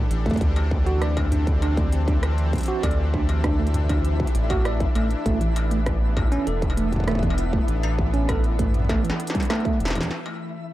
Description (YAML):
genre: IDM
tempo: 99 BPM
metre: 4/4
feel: straight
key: unclear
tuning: A4 = 445 Hz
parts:
  - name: warm analog pad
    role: sustained chords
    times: 0.0-10.7 s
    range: E3 to A4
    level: -31 LUFS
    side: equal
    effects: chorus, tremolo, vintage 12-bit sampler grit
  - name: bell-like tine electric piano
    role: arpeggios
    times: 0.0-10.1 s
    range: E3 to D5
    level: -28 LUFS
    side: right 3 dB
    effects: medium stereo tremolo, analog delay
  - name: round analog bass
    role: bass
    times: 0.1-10.0 s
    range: E1 to D2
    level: -23 LUFS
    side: equal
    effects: none
  - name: industrial drum kit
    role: drums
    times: 0.1-10.4 s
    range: hi-hat, rim click, snare drum, struck metal, toms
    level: -31 LUFS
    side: equal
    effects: none
  - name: electronic kick drum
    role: drums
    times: 0.3-10.1 s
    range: none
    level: -25 LUFS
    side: equal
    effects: distortion
  - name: twinkling granular texture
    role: texture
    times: 1.3-10.7 s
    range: E4 to A5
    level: -35 LUFS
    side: left 4 dB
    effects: built-in reverb
room: digital ambience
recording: dry, gritty hardware recording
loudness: -20 LUFS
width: side -15 dB against mid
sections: 0.0-10.1 A section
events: drum fill 8.9-10.1; band accent 10.0-10.3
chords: 0.4 D9sus4; 5.0 A9sus4; 10.1 D7sus2 (rootless)